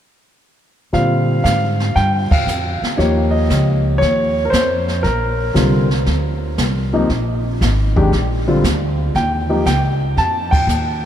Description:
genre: jazz piano trio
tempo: 117 BPM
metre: 4/4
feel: swing 69% on 8ths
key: Bb major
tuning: A4 = 440 Hz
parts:
  - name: warm grand piano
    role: melody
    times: 0.9-11.1 s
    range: C3 to A5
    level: -17 LUFS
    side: left 1 dB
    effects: none
  - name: upright bass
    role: bass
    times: 0.9-11.1 s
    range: Ab1 to Bb2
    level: -18 LUFS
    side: equal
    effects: none
  - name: jazz brush drum kit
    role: drums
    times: 0.9-11.1 s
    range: brushed snare drum, hi-hat, kick drum, ride cymbal, snare drum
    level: -22 LUFS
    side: equal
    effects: none
room: moderate cathedral reverb, RT60 6.1 s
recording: in a vast, echoing space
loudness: -14 LUFS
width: side -10 dB against mid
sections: 0.9-11.1 A section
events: band accent 2.2, 10.4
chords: 0.9 Bb9; 3.0 Eb9; 5.0 Bb9; 9.1 Eb9

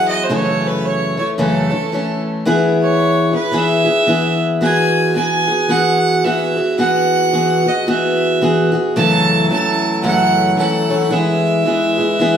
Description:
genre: acoustic folk duo or small band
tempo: 111 BPM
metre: 4/4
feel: swing 60% on 8ths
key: E major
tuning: A4 = 440 Hz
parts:
  - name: bright fiddle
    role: second line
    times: 0.0-12.4 s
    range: A4 to A5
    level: -17 LUFS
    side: right 2 dB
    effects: none
  - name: picked steel-string acoustic guitar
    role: accompaniment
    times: 0.0-12.4 s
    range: F#2 to A4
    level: -15 LUFS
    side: left 1 dB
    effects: none
  - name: hand-pumped harmonium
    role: sustained chords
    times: 9.0-12.4 s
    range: F#3 to B4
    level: -22 LUFS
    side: right 1 dB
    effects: none
room: wet large studio reverb, RT60 1.2 s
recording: band playing live in one room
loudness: -13 LUFS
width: side -8 dB against mid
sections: 0.0-4.6 A section; 4.6-12.4 B section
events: fiddle solo 0.0-4.6, 4.6-12.4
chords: 0.3 F#m7; 2.5 E; 4.6 Eadd9; 9.0 F#m7; 11.1 E

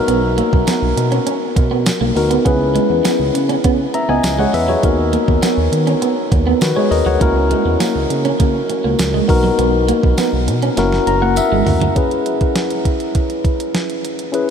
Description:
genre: 1980s-style pop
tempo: 101 BPM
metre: 4/4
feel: straight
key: C# dorian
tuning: A4 = 440 Hz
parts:
  - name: tine electric piano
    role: accompaniment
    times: 0.0-14.5 s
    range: B3 to A#5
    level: -17 LUFS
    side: left 3 dB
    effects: none
  - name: electric guitar at the edge of break-up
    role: riff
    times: 0.0-11.9 s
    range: F#3 to C#4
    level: -20 LUFS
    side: right 5 dB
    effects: wide subtle chorus, diffuse ambient delay
  - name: smooth synth bass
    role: bass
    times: 0.1-11.9 s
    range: F#1 to D#3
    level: -19 LUFS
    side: right 1 dB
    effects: none
  - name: clean 12-bit digital drum machine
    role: drums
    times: 0.1-14.5 s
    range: hi-hat, kick drum, snare drum, tambourine, toms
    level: -20 LUFS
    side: right 1 dB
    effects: none
  - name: tambourine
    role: percussion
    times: 0.7-11.5 s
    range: none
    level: -36 LUFS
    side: right 6 dB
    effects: none
room: moderate huge ambient reverb, RT60 6.9 s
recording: dreamy mix soaked in reverb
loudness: -13 LUFS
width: side -7 dB against mid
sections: 0.0-12.0 A section; 12.0-14.5 B section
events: drum fill 10.8-12.0; tine electric piano fill 10.8-12.0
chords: 0.0 Bmaj7; 2.5 C#m7; 4.8 Bmaj7/D#; 7.2 F#7/C#; 9.3 Bmaj7; 10.8 F#7; 12.0 C#m7

